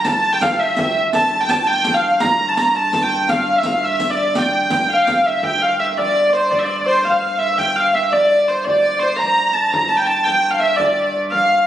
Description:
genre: medieval dance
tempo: 112 BPM (dotted quarters)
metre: 6/8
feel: straight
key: G dorian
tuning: A4 = 440 Hz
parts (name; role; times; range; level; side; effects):
- warm hurdy-gurdy; melody; 0.0-11.7 s; C5 to Bb5; -16 LUFS; equal; none
- breathy mellow tenor recorder; second line; 0.0-11.7 s; C5 to Bb5; -24 LUFS; left 2 dB; none
- concert harp; second line; 0.0-11.7 s; C5 to Bb5; -24 LUFS; right 3 dB; none
- warm viola da gamba; drone; 0.0-11.7 s; G2; -31 LUFS; equal; none
- riq; percussion; 0.0-5.2 s; none; -26 LUFS; right 1 dB; none
- frame drum; percussion; 0.1-11.5 s; none; -30 LUFS; left 1 dB; none
room: wet recital hall reverb, RT60 1.3 s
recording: recorded on a phone in the room, studio reverb, compression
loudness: -14 LUFS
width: side -11 dB against mid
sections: 0.0-5.4 A section; 5.4-11.7 B section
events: none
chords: none

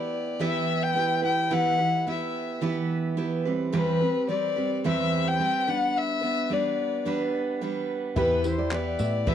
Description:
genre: acoustic pop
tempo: 108 BPM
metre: 4/4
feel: straight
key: E minor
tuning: A4 = 439 Hz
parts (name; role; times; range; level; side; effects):
- warm violin; melody; 0.0-9.3 s; B4 to G5; -26 LUFS; left 5 dB; none
- picked steel-string acoustic guitar; accompaniment; 0.0-9.3 s; E2 to B4; -27 LUFS; right 4 dB; none
- warm baby grand piano; accompaniment; 8.2-9.3 s; E4 to B4; -37 LUFS; left 4 dB; none
- nylon-string guitar; arpeggios; 8.2-9.1 s; B4 to E5; -32 LUFS; right 6 dB; none
- vintage muted fingered electric bass; bass; 8.2-9.3 s; E2 to A2; -29 LUFS; left 1 dB; none
- compact cocktail drum kit; drums; 8.2-9.3 s; handclaps, kick drum, tambourine; -31 LUFS; left 1 dB; none
room: moderate studio reverb, RT60 0.7 s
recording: worn, warbling old tape, cassette tape, warbly pitch drift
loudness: -24 LUFS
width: side -9 dB against mid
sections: 0.0-9.3 A section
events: none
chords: 0.0 Em; 3.5 Cmaj7/E; 5.7 G; 8.2 Em

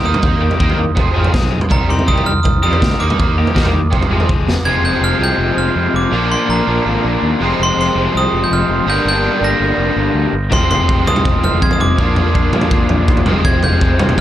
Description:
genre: indie rock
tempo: 164 BPM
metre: 4/4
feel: straight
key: unclear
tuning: A4 = 440 Hz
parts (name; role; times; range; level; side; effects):
- glockenspiel with brass mallets; melody; 0.0-14.1 s; Bb5 to Bb6; -19 LUFS; right 2 dB; none
- crunchy overdriven guitar; riff; 0.0-14.2 s; F2 to Ab4; -20 LUFS; left 8 dB; none
- overdriven electric guitar; riff; 0.0-14.2 s; F2 to G4; -20 LUFS; right 5 dB; ensemble chorus
- fuzz fingered electric bass; bass; 0.0-14.2 s; F1 to F2; -20 LUFS; equal; overdrive
- raw garage drum kit; drums; 0.1-4.6, 10.5-14.2 s; kick drum, snare drum, toms; -14 LUFS; equal; none
room: light reverb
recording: none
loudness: -12 LUFS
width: side -12 dB against mid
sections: 0.0-4.7 A section; 4.7-14.2 B section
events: drum fill 4.3-4.7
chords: 0.0 Eb; 1.0 Fm; 1.7 Cm; 3.0 Ebmaj7; 3.9 Fm; 6.1 Bb; 7.4 Fm; 8.9 Gm; 10.5 Fm; 12.0 Bb; 13.3 Fm

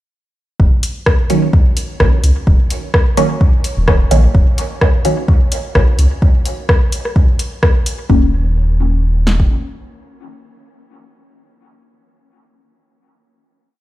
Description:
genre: dub techno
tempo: 128 BPM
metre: 4/4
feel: swing 55% on 16ths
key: Eb minor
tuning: A4 = 440 Hz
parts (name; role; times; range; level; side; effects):
- round analog bass; bass; 0.6-9.5 s; Eb1 to Db2; -13 LUFS; equal; sidechain pumping
- deep house drum kit; drums; 0.6-9.5 s; kick drum, snare drum; -12 LUFS; equal; overdrive
- deep house drum kit; drums; 0.8-8.0 s; hi-hat, rim click; -19 LUFS; left 1 dB; overdrive
- filtered dub chord stab; stabs; 1.3-5.2, 8.1-12.4 s; Eb3 to Db4; -20 LUFS; right 1 dB; phaser, sidechain pumping, dub echo
room: little or no reverb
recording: played on a big sound system in a bare room, stone room reverb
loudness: -11 LUFS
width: side -16 dB against mid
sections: 0.6-8.1 groove; 8.1-11.8 final chord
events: none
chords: 0.6 Ebm7

